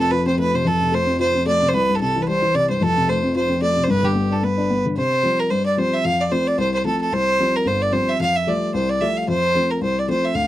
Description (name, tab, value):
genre	celtic folk, Celtic reel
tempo	223 BPM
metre	4/4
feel	swing 56% on 8ths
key	unclear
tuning	A4 = 440 Hz
part	clear fiddle	melody	0.0-10.5 s	G4 to F5	-19 LUFS	right 1 dB	none
part	dark upright piano	accompaniment	0.0-10.5 s	F1 to F4	-21 LUFS	left 2 dB	none
room	light reverb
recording	dry, close 1970s-style studio recording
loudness	-17 LUFS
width	side -14 dB against mid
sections	0.0-5.0 A section; 5.0-10.5 B section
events	none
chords	0.0 F; 1.7 C; 2.8 F; 3.9 G; 5.0 Csus4; 6.0 F; 7.1 Csus4; 8.2 Fadd9; 9.3 F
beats	0.12 0.39 | 0.66 0.93 1.20 1.47 | 1.74 2.01 2.28 2.55 | 2.82 3.08 3.35 3.62 | 3.89 4.16 4.43 4.70 | 4.97 5.24 5.51 5.78 | 6.05 6.32 6.59 6.86 | 7.13 7.40 7.67 7.93 | 8.20 8.47 8.74 9.01 | 9.28 9.55 9.82 10.09 | 10.35